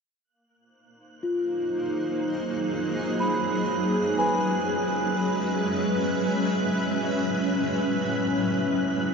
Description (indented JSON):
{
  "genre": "ambient",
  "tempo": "free time",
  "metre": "none",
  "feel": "none",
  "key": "unclear",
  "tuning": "A4 = 440 Hz",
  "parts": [
    { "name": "granular cloud pad", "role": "sustained chords", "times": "1.5-9.1 s", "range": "A2 to E5", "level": "-24 LUFS", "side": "equal", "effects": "built-in reverb" },
    { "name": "wind-like tuned noise texture", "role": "texture", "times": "1.3-9.1 s", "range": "Gb6", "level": "-35 LUFS", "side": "right 3 dB", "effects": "built-in reverb" },
    { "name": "large celesta", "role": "arpeggios", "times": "1.2-6.4 s", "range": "F4 to B5", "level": "-30 LUFS", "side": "equal", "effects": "ping-pong delay" }
  ],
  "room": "wet huge ambient reverb, RT60 7.8 s",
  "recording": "nothing above 7.7 kHz",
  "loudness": "-23 LUFS",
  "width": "side -5 dB against mid",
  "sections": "0.2-9.1 A section",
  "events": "fade-in on synth texture 0.2-9.1",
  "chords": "0.2 Ab7; 3.2 E; 6.1 A6"
}